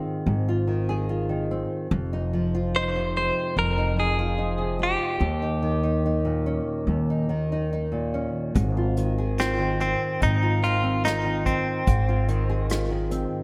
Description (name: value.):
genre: folk.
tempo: 73 BPM.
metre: 4/4.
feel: straight.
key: Ab major.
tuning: A4 = 440 Hz.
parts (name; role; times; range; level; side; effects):
nylon-string guitar; accompaniment; 0.0-13.4 s; Eb2 to Ab4; -29 LUFS; equal; lush chorus.
upright bass; bass; 0.3-13.2 s; F1 to Eb2; -28 LUFS; equal; none.
direct-recorded clean electric guitar; melody; 2.8-12.7 s; C4 to C5; -29 LUFS; equal; tremolo.
soft brush drum kit; drums; 8.6-13.3 s; hi-hat, kick drum, rim click; -31 LUFS; equal; none.
room: moderate lush hall reverb, RT60 2.1 s.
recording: dreamy mix soaked in reverb.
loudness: -25 LUFS.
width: mono.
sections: 0.0-8.6 A section; 8.6-13.4 A section.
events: none.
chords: 0.0 Ab6; 1.9 Fm7; 5.2 Eb7; 8.6 Ab6.